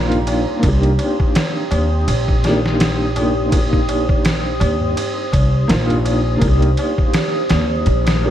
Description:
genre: trip hop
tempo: 83 BPM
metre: 4/4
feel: swing 57% on 16ths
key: C minor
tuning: A4 = 441 Hz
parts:
  - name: felt-muted upright piano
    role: accompaniment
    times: 0.0-8.3 s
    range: Bb3 to G4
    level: -21 LUFS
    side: equal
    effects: tremolo, tape echo
  - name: deep dark ambient pad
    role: sustained chords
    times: 0.0-8.3 s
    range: G4 to Eb6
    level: -23 LUFS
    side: equal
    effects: chorus, built-in reverb, vintage 12-bit sampler grit
  - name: upright bass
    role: bass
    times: 0.0-8.3 s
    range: Bb1 to Eb2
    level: -18 LUFS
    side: equal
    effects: none
  - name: trip hop sampler-style drum kit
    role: drums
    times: 0.1-8.2 s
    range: kick drum, ride cymbal, snare drum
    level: -19 LUFS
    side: equal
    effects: none
  - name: tabla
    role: percussion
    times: 0.1-8.3 s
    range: none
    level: -28 LUFS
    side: left 1 dB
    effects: none
room: light reverb, studio reverb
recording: vinyl crackle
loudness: -14 LUFS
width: side -11 dB against mid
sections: 0.0-8.3 A section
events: none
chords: 0.0 Cm7

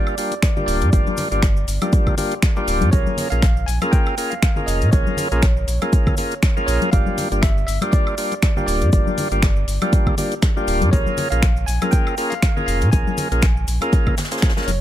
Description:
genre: deep house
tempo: 120 BPM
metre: 4/4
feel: swing 56% on 16ths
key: unclear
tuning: A4 = 440 Hz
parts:
  - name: bell-like tine electric piano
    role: melody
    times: 0.0-14.8 s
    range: Db5 to Ab5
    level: -29 LUFS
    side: right 1 dB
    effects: medium stereo tremolo, ping-pong delay
  - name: tonewheel organ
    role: stabs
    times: 0.0-14.7 s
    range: G3 to C5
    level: -23 LUFS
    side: equal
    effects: overdrive, slow rotary speaker, sidechain pumping
  - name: deep house drum kit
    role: drums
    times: 0.1-14.8 s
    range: finger snaps, hi-hat, woodblock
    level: -28 LUFS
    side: equal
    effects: none
  - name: soft brush drum kit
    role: drums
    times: 0.1-14.8 s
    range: hi-hat, shaker, snare drum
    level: -34 LUFS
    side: equal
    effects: sidechain pumping on hats, high-pass filter on hats, high-pass filter on snare, sidechain pumping on perc, high-pass filter on perc, high-pass filter on room
  - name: maracas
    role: percussion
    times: 0.1-14.8 s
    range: none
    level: -36 LUFS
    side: left 4 dB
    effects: none
  - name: congas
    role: percussion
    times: 0.3-14.8 s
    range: none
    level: -27 LUFS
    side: left 4 dB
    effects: none
  - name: electronic kick drum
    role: drums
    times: 0.4-14.5 s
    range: none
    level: -17 LUFS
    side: equal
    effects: none
  - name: sub bass with octave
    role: bass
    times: 0.7-14.8 s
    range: D1 to Bb2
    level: -20 LUFS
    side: equal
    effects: sidechain pumping
room: small room reverb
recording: dark, warm production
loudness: -16 LUFS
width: side -12 dB against mid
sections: 0.0-14.8 A section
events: none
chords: 0.0 Gm7; 2.9 Bbm7; 6.9 Gm7; 10.9 Bbm7

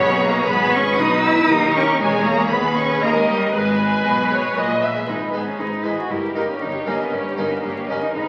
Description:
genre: classical, baroque-style concerto movement with solo episodes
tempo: 118 BPM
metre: 3/4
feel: straight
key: G# minor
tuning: A4 = 440 Hz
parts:
  - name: rich chamber violin section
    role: melody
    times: 0.0-8.3 s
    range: D#5 to E6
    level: -29 LUFS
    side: equal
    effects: none
  - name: warm cello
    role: melody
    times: 0.0-8.3 s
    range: G3 to F#4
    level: -24 LUFS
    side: equal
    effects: none
  - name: rich chamber violin section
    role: second line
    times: 0.0-8.3 s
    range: G4 to E5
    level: -25 LUFS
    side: equal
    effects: none
  - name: harpsichord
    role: accompaniment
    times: 0.0-8.3 s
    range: D#2 to G#5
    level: -29 LUFS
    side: equal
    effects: none
  - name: rich symphonic viola section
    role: accompaniment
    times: 0.0-8.3 s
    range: D#4 to B4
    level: -28 LUFS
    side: equal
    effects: none
  - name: dark chamber double bass section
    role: bass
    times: 0.0-8.2 s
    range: E1 to D#2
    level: -32 LUFS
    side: equal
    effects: none
  - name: warm studio cello section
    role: bass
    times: 0.0-8.2 s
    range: D#2 to B2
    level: -32 LUFS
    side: equal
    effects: none
room: wet recital hall reverb, RT60 1.7 s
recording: very old 78 rpm record, vinyl crackle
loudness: -19 LUFS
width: mono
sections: 0.0-5.1 A section; 5.1-8.3 B section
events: none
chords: 0.0 G#m/B; 0.5 G#m; 1.5 D#; 2.0 C#m/E; 2.5 G#m/D#; 3.0 D#7; 3.5 G#m; 6.1 D#/G; 6.6 D#7/G

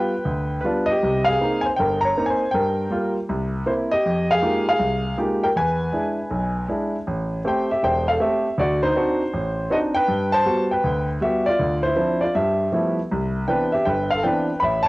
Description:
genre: solo jazz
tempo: 159 BPM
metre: 4/4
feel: swing 64% on 8ths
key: A minor from 7.1 s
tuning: A4 = 440 Hz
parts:
  - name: warm concert grand piano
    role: solo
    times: 0.0-14.9 s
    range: E1 to B5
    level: -19 LUFS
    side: equal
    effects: cassette tape
room: moderate spring reverb, RT60 1.7 s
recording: home recording on cassette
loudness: -19 LUFS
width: side -20 dB against mid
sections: 0.0-7.1 A section; 7.1-14.9 B section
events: none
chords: 0.0 G7; 1.0 Cm7; 2.5 Gm7; 3.3 C7; 4.0 Fm11; 5.6 E7; 7.1 Am7; 8.6 D7b9; 10.1 Gmaj7; 11.6 Dm9; 12.4 G13; 13.1 Cmaj9

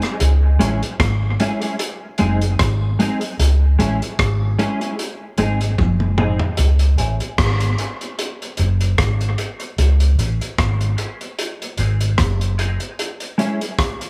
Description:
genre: dub reggae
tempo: 75 BPM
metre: 4/4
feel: swing 56% on 16ths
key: C# harmonic minor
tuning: A4 = 440 Hz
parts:
  - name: crunchy breakbeat drum kit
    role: drums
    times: 0.0-14.1 s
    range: hi-hat, kick drum, rim click, toms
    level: -25 LUFS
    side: equal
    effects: none
  - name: vintage muted fingered electric bass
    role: bass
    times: 0.2-12.8 s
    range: F#1 to C#2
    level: -19 LUFS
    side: equal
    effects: none
  - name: mellow electric guitar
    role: accompaniment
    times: 0.6-13.6 s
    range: G#3 to G#4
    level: -25 LUFS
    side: equal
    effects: ensemble chorus, high-pass filter, low-pass filter, dub echo
room: light reverb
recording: small room ambience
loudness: -19 LUFS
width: mono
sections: 0.0-6.6 A section; 6.6-14.1 B section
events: filter sweep on clean electric guitar 3.4-14.1; drum fill 5.8-6.6; break 13.0-14.1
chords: 0.2 C#m; 1.8 G#; 3.4 C#m; 5.0 G#; 6.6 C#m; 8.2 G#; 9.8 C#m; 11.4 G#; 13.0 C#m

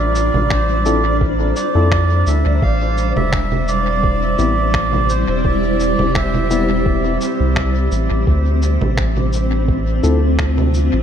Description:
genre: ambient dub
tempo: 85 BPM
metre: 4/4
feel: swing 54% on 16ths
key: D minor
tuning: A4 = 437 Hz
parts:
  - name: melodica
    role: melody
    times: 0.0-7.2 s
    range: C5 to F5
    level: -22 LUFS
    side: right 2 dB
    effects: dub echo
  - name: granular cloud pad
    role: sustained chords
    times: 0.0-11.0 s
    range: G3 to D5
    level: -20 LUFS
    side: equal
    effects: built-in reverb
  - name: soft dub sub bass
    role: bass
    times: 0.0-11.0 s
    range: E1 to F2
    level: -17 LUFS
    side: equal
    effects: none
  - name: electronic shaker, congas and finger snaps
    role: drums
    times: 0.2-10.9 s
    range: none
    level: -25 LUFS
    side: right 2 dB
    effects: dub echo
  - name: electronic kick drum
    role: drums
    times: 0.5-10.5 s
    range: none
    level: -20 LUFS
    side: equal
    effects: none
  - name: mellow tine electric piano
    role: stabs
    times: 0.9-10.2 s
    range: G3 to A4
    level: -24 LUFS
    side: left 5 dB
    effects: overdrive, dub echo
room: light reverb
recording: none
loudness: -14 LUFS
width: side -8 dB against mid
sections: 0.0-11.0 A section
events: none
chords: 0.0 Dm7; 2.6 Am7; 8.3 Dm7

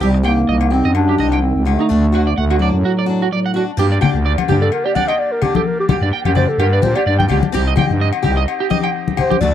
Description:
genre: highlife guitar band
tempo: 128 BPM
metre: 4/4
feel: swing 55% on 16ths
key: G harmonic minor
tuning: A4 = 441 Hz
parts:
  - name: breathy clarinet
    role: melody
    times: 0.0-9.5 s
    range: F#3 to G5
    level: -17 LUFS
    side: equal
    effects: none
  - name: breathy trombone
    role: second line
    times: 0.0-3.7 s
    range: A2 to G3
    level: -25 LUFS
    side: right 11 dB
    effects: none
  - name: picked steel-string acoustic guitar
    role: accompaniment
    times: 0.0-9.5 s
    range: F#3 to G4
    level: -25 LUFS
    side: left 9 dB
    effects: none
  - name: electric guitar at the edge of break-up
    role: arpeggios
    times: 0.0-9.4 s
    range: Eb4 to G5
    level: -22 LUFS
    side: right 9 dB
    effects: analog chorus, tape echo
  - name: growling FM bass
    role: bass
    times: 0.0-9.5 s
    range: C2 to Bb2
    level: -16 LUFS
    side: equal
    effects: none
  - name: agogo bells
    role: percussion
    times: 0.2-9.3 s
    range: none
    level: -25 LUFS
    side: left 15 dB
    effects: none
  - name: overdriven combo organ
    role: sustained chords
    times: 3.8-9.5 s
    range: A3 to G4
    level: -30 LUFS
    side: right 4 dB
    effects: none
  - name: congas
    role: percussion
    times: 4.0-9.4 s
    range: none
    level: -19 LUFS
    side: left 5 dB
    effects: none
room: small room ambience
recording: dry, close 1970s-style studio recording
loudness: -13 LUFS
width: side -10 dB against mid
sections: 0.0-3.8 A section; 3.8-9.5 B section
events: break 2.8-3.8; clarinet solo 3.8-9.5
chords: 0.0 Cm; 1.9 D; 3.8 Gm; 7.5 Cm

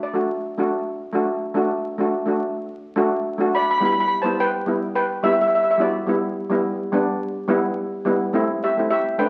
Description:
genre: calypso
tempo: 106 BPM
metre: 4/4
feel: swing 53% on 16ths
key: E minor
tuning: A4 = 439 Hz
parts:
  - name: steel pan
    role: melody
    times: 0.0-9.3 s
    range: F#4 to B5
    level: -22 LUFS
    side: equal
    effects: none
  - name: steel pan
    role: accompaniment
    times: 0.1-9.3 s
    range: G3 to F#4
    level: -24 LUFS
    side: equal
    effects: none
room: wet large studio reverb, RT60 1.1 s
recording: very old 78 rpm record, vinyl crackle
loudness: -22 LUFS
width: mono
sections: 0.0-1.6 A section; 1.6-3.8 B section; 3.8-9.3 C section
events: none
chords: 0.0 D; 3.8 Em; 8.3 Am7

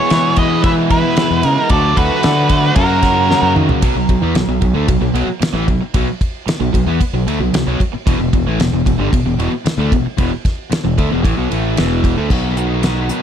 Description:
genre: classic rock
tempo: 113 BPM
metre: 4/4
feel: straight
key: unclear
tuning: A4 = 440 Hz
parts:
  - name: octave-fuzz lead guitar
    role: melody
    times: 0.0-3.5 s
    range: A#4 to E5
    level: -18 LUFS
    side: right 1 dB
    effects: distortion, tape echo
  - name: octave-fuzz lead guitar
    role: second line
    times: 0.0-3.5 s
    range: E4 to B4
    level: -24 LUFS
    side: right 3 dB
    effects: distortion, tape echo
  - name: cranked stack guitar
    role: riff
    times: 0.0-13.2 s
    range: E2 to E4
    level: -20 LUFS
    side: right 14 dB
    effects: overdrive
  - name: overdriven electric guitar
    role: riff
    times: 0.0-13.2 s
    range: E2 to G#4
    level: -20 LUFS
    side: left 12 dB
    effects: none
  - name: bright upright piano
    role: accompaniment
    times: 0.1-3.7 s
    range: C#4 to B4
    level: -25 LUFS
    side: left 8 dB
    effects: none
  - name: growling fingered electric bass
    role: bass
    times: 0.1-13.1 s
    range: E1 to E3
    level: -18 LUFS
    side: equal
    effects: overdrive
  - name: damped 70s drum kit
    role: drums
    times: 0.1-13.2 s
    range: crash cymbal, hi-hat, kick drum, ride cymbal, snare drum, toms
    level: -18 LUFS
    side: equal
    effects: none
room: light reverb, studio ambience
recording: none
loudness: -13 LUFS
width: side -9 dB against mid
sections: 0.0-3.8 A section; 3.8-12.3 B section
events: drum fill 3.3-3.8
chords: 0.0 E; 1.7 D; 2.8 F#; 3.8 B5; 8.1 E5; 12.3 B

